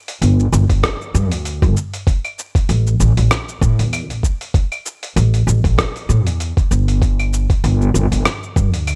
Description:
organic downtempo; 97 BPM; 4/4; swing 56% on 16ths; A4 = 440 Hz
dusty soul sampler-style drum kit; drums; 0.1-9.0 s; claves, hi-hat, rim click, shaker; -25 LUFS; equal; overdrive
upright bass; bass; 0.2-9.0 s; G1 to A2; -17 LUFS; equal; sidechain pumping
electronic kick drum; drums; 0.7-8.7 s; -18 LUFS; equal; overdrive
little or no reverb; -17 LUFS; mono
0.0-9.0 A section

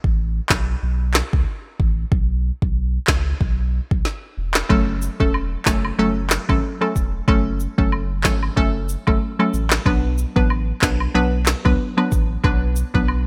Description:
dancehall; 93 BPM; 4/4; swing 56% on 16ths; F# minor; A4 = 440 Hz
warm sub bass; bass; 0.0-13.3 s; E1 to C#2; -25 LUFS; equal
afro-pop drum kit; drums; 0.0-13.1 s; handclaps, kick drum, snare drum; -22 LUFS; equal
hollow square pluck; accompaniment; 4.7-13.1 s; F#3 to B4; -24 LUFS; equal; chorus
woodblock and cabasa; percussion; 4.7-13.3 s; -32 LUFS; equal
light reverb, digital ambience; bright 1980s-style digital production; -20 LUFS; mono
0.0-13.3 A section
0.0 Esus4 (rootless); 4.7 F#m; 9.9 Bm

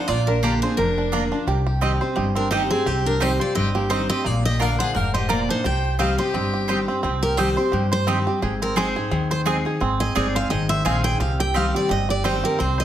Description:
bluegrass; 173 BPM; 4/4; swing 56% on 8ths; C minor; A4 = 439 Hz
picked steel-string acoustic guitar; melody; 0.0-12.8 s; G4 to G5; -25 LUFS; right 1 dB
rich fiddle; second line; 0.0-6.9 s; Bb3 to C5; -31 LUFS; left 5 dB
picked steel-string acoustic guitar; accompaniment; 0.0-12.8 s; F2 to Ab4; -25 LUFS; left 2 dB
bluegrass banjo; arpeggios; 0.0-12.8 s; Bb3 to C5; -27 LUFS; right 5 dB
upright bass; bass; 0.1-12.8 s; F1 to G2; -25 LUFS; equal
mandolin; stabs; 0.4-12.4 s; Bb3 to Bb5; -29 LUFS; right 5 dB; tape echo
moderate large studio reverb, RT60 1.2 s; -19 LUFS; side -11 dB against mid
0.0-7.0 A section; 7.0-12.8 B section
0.0 Bb; 1.5 Cm; 4.3 Bb; 5.6 Cm; 8.4 Ab; 11.2 Cm

